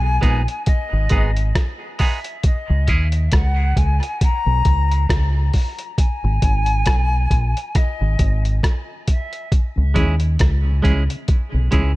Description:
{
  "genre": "dub reggae",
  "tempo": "68 BPM",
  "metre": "4/4",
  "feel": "swing 56% on 16ths",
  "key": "unclear",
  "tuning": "A4 = 440 Hz",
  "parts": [
    { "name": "silver concert flute", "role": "melody", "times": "0.0-9.5 s", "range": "D#5 to A#5", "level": "-26 LUFS", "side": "left 3 dB", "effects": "dub echo" },
    { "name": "deep dub fingered electric bass", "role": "bass", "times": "0.0-12.0 s", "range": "G#1 to D#2", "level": "-17 LUFS", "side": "equal", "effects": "none" },
    { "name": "clean electric guitar", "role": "accompaniment", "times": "0.2-3.1, 9.9-11.9 s", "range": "G#3 to G#4", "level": "-26 LUFS", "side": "right 3 dB", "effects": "tremolo, high-pass filter, dub echo" },
    { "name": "lo-fi sampler-style drum kit", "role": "drums", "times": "0.2-12.0 s", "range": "hi-hat, kick drum, rim click", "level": "-18 LUFS", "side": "equal", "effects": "none" },
    { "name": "mellow tonewheel organ", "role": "accompaniment", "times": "9.8-11.8 s", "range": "C#3 to C#4", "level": "-29 LUFS", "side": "left 2 dB", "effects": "chorus vibrato, high-pass filter" }
  ],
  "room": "little or no reverb",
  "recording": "none",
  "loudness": "-16 LUFS",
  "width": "side -19 dB against mid",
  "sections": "0.0-12.0 A section",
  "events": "break 0.0-9.5; filter sweep 0.0-6.0",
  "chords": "0.0 G#m; 2.4 N.C.; 6.0 G#m; 9.5 C#m"
}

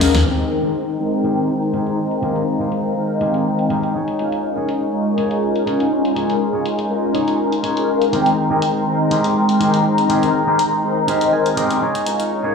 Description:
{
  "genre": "filtered disco house",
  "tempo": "122 BPM",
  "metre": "4/4",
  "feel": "swing 53% on 16ths",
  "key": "unclear",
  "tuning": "A4 = 440 Hz",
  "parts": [
    { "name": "mellow synth brass", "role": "accompaniment", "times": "0.0-12.5 s", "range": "Eb3 to G5", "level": "-18 LUFS", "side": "left 1 dB", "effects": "chorus, phaser, low-pass filter" },
    { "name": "rich studio string section", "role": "sustained chords", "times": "0.0-12.5 s", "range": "Ab3 to C6", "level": "-22 LUFS", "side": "left 2 dB", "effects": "low-pass filter" },
    { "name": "twangy electric guitar", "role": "riff", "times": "0.0-12.5 s", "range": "Eb3 to Ab5", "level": "-25 LUFS", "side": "right 2 dB", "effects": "low-pass filter" },
    { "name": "house drum kit", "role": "drums", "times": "0.0-12.3 s", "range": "hi-hat, snare drum", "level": "-28 LUFS", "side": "left 1 dB", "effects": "low-pass filter on hats, small room ambience, low-pass filter on snare" }
  ],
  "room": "wet lush hall reverb, RT60 2.4 s",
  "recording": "played on a big sound system in a bare room, large studio reverb",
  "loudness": "-16 LUFS",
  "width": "side -5 dB against mid",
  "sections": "0.3-12.5 A section",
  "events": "drum fill 0.0; filter sweep on drum 0.3-12.5; filter sweep 0.3-12.5; clean electric guitar fill 11.1-12.1",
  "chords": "0.3 Abmaj9/Eb; 3.9 Eb7sus4; 8.1 Abmaj9/Eb; 11.8 Eb7sus4"
}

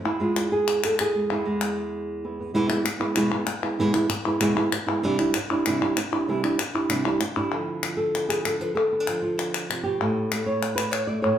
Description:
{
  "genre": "flamenco",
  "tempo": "193 BPM",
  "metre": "4/4",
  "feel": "straight",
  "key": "E phrygian dominant",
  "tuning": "A4 = 440 Hz",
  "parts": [
    { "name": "flamenco guitar", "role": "melody", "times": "0.0-11.4 s", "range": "E2 to D5", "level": "-23 LUFS", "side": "right 1 dB", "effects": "none" },
    { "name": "palmas hand claps", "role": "percussion", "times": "0.1-11.4 s", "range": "none", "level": "-29 LUFS", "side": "left 5 dB", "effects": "none" }
  ],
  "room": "wet large studio reverb, RT60 0.9 s",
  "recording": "band playing live in one room",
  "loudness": "-22 LUFS",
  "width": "side -10 dB against mid",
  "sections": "0.0-2.5 A section; 2.5-7.5 B section; 7.5-11.4 C section",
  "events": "break 1.9-2.5",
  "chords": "0.1 E; 5.0 Cadd9; 7.5 Dmadd9; 10.0 A7"
}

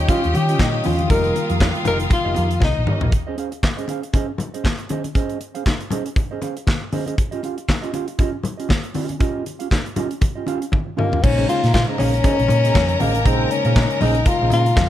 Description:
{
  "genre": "disco",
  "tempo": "118 BPM",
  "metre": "4/4",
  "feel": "swing 56% on 16ths",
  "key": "Bb dorian",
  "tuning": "A4 = 440 Hz",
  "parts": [
    { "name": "breathy tenor saxophone", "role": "melody", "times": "0.0-3.1, 11.0-14.9 s", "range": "Bb3 to Bb4", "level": "-21 LUFS", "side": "left 4 dB", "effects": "none" },
    { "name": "clear studio string section", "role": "second line", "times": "0.0-3.1, 11.2-14.9 s", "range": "Eb4 to Bb5", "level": "-28 LUFS", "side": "equal", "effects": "none" },
    { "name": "mellow electric guitar", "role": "accompaniment", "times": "0.0-14.8 s", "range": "Db4 to F5", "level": "-27 LUFS", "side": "right 6 dB", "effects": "none" },
    { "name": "tine electric piano", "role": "accompaniment", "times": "0.0-3.1, 11.2-14.9 s", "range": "Db3 to C5", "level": "-28 LUFS", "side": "left 3 dB", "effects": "fast stereo tremolo" },
    { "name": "warm studio string section", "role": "sustained chords", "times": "0.0-3.1, 11.2-14.9 s", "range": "Bb4 to Eb6", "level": "-30 LUFS", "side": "left 2 dB", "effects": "none" },
    { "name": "hollow-body short-scale fingered electric bass", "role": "bass", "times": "0.0-3.1, 11.2-14.9 s", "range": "F1 to Eb3", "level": "-20 LUFS", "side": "equal", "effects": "none" },
    { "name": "modern studio drum kit", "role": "drums", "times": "0.1-14.9 s", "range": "crash cymbal, handclaps, hi-hat, kick drum, snare drum, toms", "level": "-20 LUFS", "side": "equal", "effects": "none" },
    { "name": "congas", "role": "percussion", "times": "0.1-14.9 s", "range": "none", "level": "-28 LUFS", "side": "left 4 dB", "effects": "none" }
  ],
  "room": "light reverb",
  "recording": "none",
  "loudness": "-17 LUFS",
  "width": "side -12 dB against mid",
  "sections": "0.0-3.1 A section; 3.1-11.2 B section; 11.2-14.9 C section",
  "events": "tenor saxophone solo 0.0-3.1; drum fill 2.6-3.1, 10.7-11.2",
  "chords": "0.0 Eb9; 1.1 F9sus4; 3.1 Dbmaj7sus2; 7.2 Eb9; 11.2 Bbm11"
}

